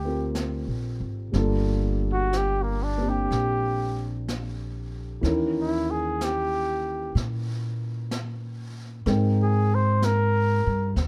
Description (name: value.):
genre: jazz ballad.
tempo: 63 BPM.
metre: 4/4.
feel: swing 68% on 8ths.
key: G minor.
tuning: A4 = 440 Hz.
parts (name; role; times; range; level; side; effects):
mellow trumpet; melody; 0.0-11.0 s; Bb3 to C5; -29 LUFS; equal; none.
dark concert grand piano; accompaniment; 0.0-11.1 s; Eb3 to G5; -33 LUFS; equal; none.
upright bass; bass; 0.0-11.1 s; G1 to Bb2; -29 LUFS; equal; none.
jazz brush drum kit; drums; 0.3-11.1 s; brushed snare drum, hi-hat, snare drum; -40 LUFS; equal; none.
room: light reverb.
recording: dark, warm production.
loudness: -26 LUFS.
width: mono.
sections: 0.0-1.3 A section; 1.3-11.1 B section.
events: trumpet solo 1.3-11.1.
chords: 0.0 Gm9; 5.2 Eb7b9; 9.1 Abmaj7.